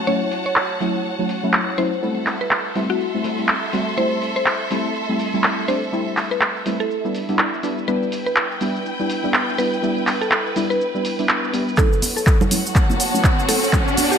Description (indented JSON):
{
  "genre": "deep house",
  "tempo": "123 BPM",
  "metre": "4/4",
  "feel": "swing 59% on 16ths",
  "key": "F# phrygian",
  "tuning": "A4 = 440 Hz",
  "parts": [
    { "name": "warm studio string section", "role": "texture", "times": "0.0-14.2 s", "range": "E4 to C6", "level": "-26 LUFS", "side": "right 1 dB", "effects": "sidechain pumping" },
    { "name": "mallet-like synth pluck", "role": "melody", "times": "0.1-14.2 s", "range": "F#4 to C#5", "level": "-25 LUFS", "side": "equal", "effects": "chorus, digital delay" },
    { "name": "deep mellow chord stab", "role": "stabs", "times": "0.1-14.2 s", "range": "F#3 to F#4", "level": "-23 LUFS", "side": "equal", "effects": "chorus, sidechain pumping, digital delay" },
    { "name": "deep house drum kit", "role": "drums", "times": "0.1-14.2 s", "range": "handclaps, hi-hat, shaker", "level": "-21 LUFS", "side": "equal", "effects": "overdrive, low-pass filter on perc, studio reverb, low-pass filter on cymbals, low-pass filter on hats, low-pass filter on snare" },
    { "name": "electronic kick drum", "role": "drums", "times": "11.8-13.8 s", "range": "none", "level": "-17 LUFS", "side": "equal", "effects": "overdrive, studio reverb" },
    { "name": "riser", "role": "sound effects", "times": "12.6-14.2 s", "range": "none", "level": "-24 LUFS", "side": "equal", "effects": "none" },
    { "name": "congas", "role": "percussion", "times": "12.0-14.1 s", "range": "none", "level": "-26 LUFS", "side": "right 2 dB", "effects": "none" }
  ],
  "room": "moderate lush hall reverb, RT60 1.6 s, digital ambience",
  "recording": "bright 1980s-style digital production",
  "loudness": "-18 LUFS",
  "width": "side -7 dB against mid",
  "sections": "0.0-11.8 A section; 11.8-14.2 B section",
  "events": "build-up 11.8-14.2; drum fill 11.8-14.2; filter sweep on synth stab 11.8-14.2; filter sweep 11.8-14.2; riser 12.6-14.2",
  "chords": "0.0 F#m7; 2.0 Am7; 6.9 Em7; 11.8 F#m7"
}